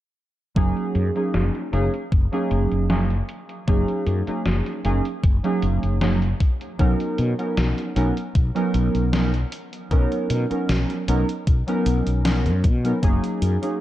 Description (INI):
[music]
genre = vaporwave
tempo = 77 BPM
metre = 4/4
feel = straight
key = F# major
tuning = A4 = 435 Hz
[part]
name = warbly lo-fi synth keys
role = accompaniment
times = 0.6-13.8 s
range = F#3 to A#4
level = -24 LUFS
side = right 2 dB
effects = lush chorus, vintage 12-bit sampler grit, tape echo
[part]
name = mellow fretless electric bass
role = bass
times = 0.6-13.6 s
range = F#1 to B2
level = -22 LUFS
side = left 1 dB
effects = none
[part]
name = electronic kick drum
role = drums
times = 0.6-13.2 s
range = none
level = -19 LUFS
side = left 1 dB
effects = none
[part]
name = gated 80s digital drum machine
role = drums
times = 0.6-13.8 s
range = hi-hat, snare drum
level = -28 LUFS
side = left 1 dB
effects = gated reverb, gated reverb snare, low-pass filter on hats, low-pass filter on snare, low-pass filter on room
[sound]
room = digital ambience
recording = dark, warm production, cassette tape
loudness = -19 LUFS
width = side -14 dB against mid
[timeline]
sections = 0.6-13.8 A section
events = filter sweep on drum 0.6-13.8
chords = 0.6 F#69; 6.4 Bmaj9; 13.0 F#69